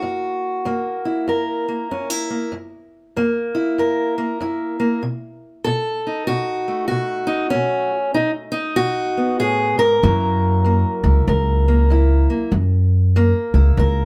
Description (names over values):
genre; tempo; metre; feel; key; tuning
acoustic country blues, solo or duo; 96 BPM; 4/4; swing 62% on 8ths; F# mixolydian; A4 = 440 Hz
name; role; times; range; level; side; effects
fingerpicked steel-string acoustic guitar; melody; 0.0-14.1 s; F#2 to A#4; -22 LUFS; equal; none
upright bass; bass; 10.0-14.1 s; C#2 to F#2; -17 LUFS; equal; none
room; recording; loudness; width
light reverb; none; -19 LUFS; mono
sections
0.0-14.1 A section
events
none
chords
0.0 F#7; 5.0 B7; 10.0 F#7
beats
| 0.04 0.66 1.29 1.91 | 2.54 3.16 3.79 4.41 | 5.04 5.66 6.29 6.91 | 7.53 8.16 8.78 9.40 | 10.03 10.65 11.27 11.90 | 12.52 13.14 13.77